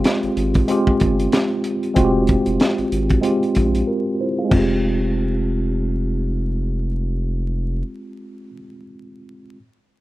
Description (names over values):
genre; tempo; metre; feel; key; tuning
hip hop, boom-bap hip-hop; 94 BPM; 4/4; swing 58% on 16ths; F minor; A4 = 440 Hz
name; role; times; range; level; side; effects
barky tine electric piano; accompaniment; 0.0-9.6 s; Ab3 to F5; -20 LUFS; equal; medium stereo tremolo, cassette tape, high-pass filter, low-pass filter
saturated sub bass; bass; 0.0-7.8 s; F1 to Bb1; -22 LUFS; equal; none
crunchy breakbeat drum kit; drums; 0.0-4.7 s; crash cymbal, hi-hat, kick drum, snare drum, toms; -20 LUFS; equal; none
room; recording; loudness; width
little or no reverb; rough home demo mix, vinyl crackle; -17 LUFS; side -17 dB against mid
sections
0.0-4.5 A section; 4.5-7.1 B section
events
filter sweep on tine electric piano 0.0-4.5; break 3.9-4.5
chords
0.0 Fmadd9